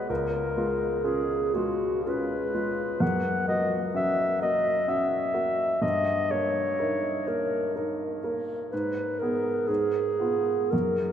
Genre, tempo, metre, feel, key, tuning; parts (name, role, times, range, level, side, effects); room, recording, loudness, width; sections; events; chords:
classical, romantic duo for clarinet and grand piano; 63 BPM; 3/4; uneven beats, rubato; A4 = 440 Hz
mellow clarinet; melody; 0.0-11.1 s; F#4 to F#5; -26 LUFS; equal
warm grand piano; accompaniment; 0.0-11.1 s; C#2 to A#4; -29 LUFS; equal
wet cathedral reverb, RT60 6.0 s; in a vast, echoing space; -24 LUFS; side -9 dB against mid
0.0-11.1 A section
0.1 C#7; 3.0 F#; 5.8 D#7/G; 8.7 G#m; 9.7 G#m6